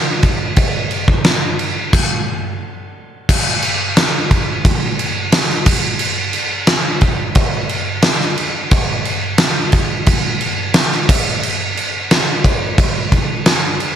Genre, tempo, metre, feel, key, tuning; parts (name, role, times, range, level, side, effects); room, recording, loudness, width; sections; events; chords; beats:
rock; 88 BPM; 4/4; straight
big rock drum kit; drums; 0.2-14.0 s; crash cymbal, kick drum, snare drum; -13 LUFS; equal
little or no reverb; -13 LUFS; side -9 dB against mid
0.0-3.3 A section; 3.3-14.0 B section
stop 1.9-3.3
| 0.58 1.26 1.94 2.61 | 3.29 3.97 4.65 5.33 | 6.00 6.68 7.36 8.04 | 8.71 9.39 10.07 10.75 | 11.43 12.11 12.79 13.46